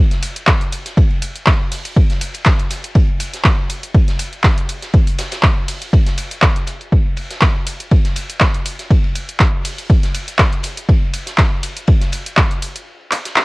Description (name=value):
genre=house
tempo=121 BPM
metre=4/4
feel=swing 54% on 16ths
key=none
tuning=none
part: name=deep house drum kit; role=drums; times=0.1-13.4 s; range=handclaps, hi-hat, ride cymbal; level=-19 LUFS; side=equal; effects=overdrive, studio reverb, cassette tape
part: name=oversized low-tuned drum kit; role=drums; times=0.1-13.4 s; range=hi-hat, ride cymbal, snare drum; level=-30 LUFS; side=left 1 dB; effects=sidechain pumping on cymbals, high-pass filter on cymbals, studio reverb, cassette tape, sidechain pumping on hats, high-pass filter on hats, high-pass filter on snare, high-pass filter on room
part: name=electronic kick drum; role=drums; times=0.5-12.5 s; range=none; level=-13 LUFS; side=equal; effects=overdrive, studio reverb, cassette tape
room=little or no reverb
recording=home recording on cassette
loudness=-14 LUFS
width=side -24 dB against mid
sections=0.0-13.4 A section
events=kick drops out 12.9-13.4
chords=none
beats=0.47 0.97 1.47 | 1.96 2.46 2.96 3.45 | 3.95 4.44 4.94 5.43 | 5.93 6.43 6.92 7.42 | 7.91 8.41 8.90 9.40 | 9.90 10.39 10.89 11.38 | 11.88 12.38 12.87 13.37